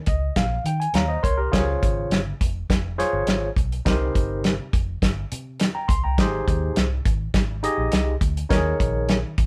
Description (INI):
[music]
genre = uptempo 1960s-style soul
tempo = 103 BPM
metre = 4/4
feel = straight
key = Ab major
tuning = A4 = 440 Hz
[part]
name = barky tine electric piano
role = accompaniment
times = 0.0-9.3 s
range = Ab2 to C6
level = -27 LUFS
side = equal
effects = none
[part]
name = vintage muted fingered electric bass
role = bass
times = 0.1-9.5 s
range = F1 to Eb3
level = -29 LUFS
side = equal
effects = none
[part]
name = warm soul drum kit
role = drums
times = 0.1-9.5 s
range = hi-hat, kick drum, snare drum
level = -24 LUFS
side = equal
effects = none
[sound]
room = light reverb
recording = band playing live in one room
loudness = -23 LUFS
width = mono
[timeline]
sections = 0.0-9.5 A section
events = tine electric piano fill 0.0-1.5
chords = 0.0 Eb7(no3); 1.5 Dbmaj7; 3.9 Cm7; 6.2 Abmaj7; 8.5 Eb7sus4